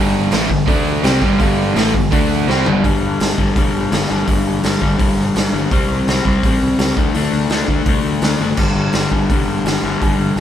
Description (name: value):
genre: punk rock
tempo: 167 BPM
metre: 4/4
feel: straight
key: unclear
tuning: A4 = 442 Hz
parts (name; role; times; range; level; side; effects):
- biting overdriven guitar; riff; 0.0-2.8 s; G2 to D4; -20 LUFS; right 5 dB; none
- crunchy overdriven guitar; riff; 0.0-10.4 s; G2 to D4; -17 LUFS; left 4 dB; none
- fuzz guitar; riff; 0.0-2.8 s; G2 to D4; -23 LUFS; right 2 dB; none
- growling picked electric bass; bass; 0.0-10.4 s; E1 to D2; -23 LUFS; right 1 dB; overdrive
- raw garage drum kit; drums; 0.3-10.4 s; crash cymbal, hi-hat, kick drum, snare drum, toms; -18 LUFS; right 1 dB; none
room: light reverb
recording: band playing live in one room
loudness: -13 LUFS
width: side -10 dB against mid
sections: 0.0-2.8 A section; 2.8-10.4 B section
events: drum fill 2.5-2.8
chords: 0.0 G5; 0.7 D5; 1.0 G5; 2.1 D5; 2.5 G5; 5.7 C5; 7.0 D5; 8.6 G5